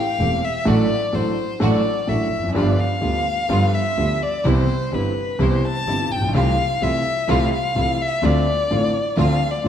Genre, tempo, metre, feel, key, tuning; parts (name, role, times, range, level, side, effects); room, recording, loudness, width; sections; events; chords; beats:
tango; 127 BPM; 4/4; rubato; A4 = 440 Hz
warm violin; second line; 0.0-9.7 s; B4 to A5; -23 LUFS; left 2 dB
warm concert grand piano; accompaniment; 0.2-9.7 s; E1 to A4; -21 LUFS; equal
rich studio string section; stabs; 0.2-9.7 s; G3 to G4; -29 LUFS; right 3 dB; slapback echo
dark double bass; bass; 0.2-9.7 s; E1 to D2; -24 LUFS; right 1 dB
wet recital hall reverb, RT60 1.5 s; vinyl crackle; -17 LUFS; side -9 dB against mid
0.0-9.7 A section
violin solo 0.0-9.7
0.0 Am7; 0.7 D/A; 2.5 G7; 4.4 Cmaj7; 6.3 Fmaj7/C; 8.2 Dm7
0.19 | 0.66 1.13 1.60 2.08 | 2.55 3.02 3.50 3.97 | 4.45 4.92 5.40 5.87 | 6.34 6.81 7.28 7.75 | 8.23 8.70 9.17 9.65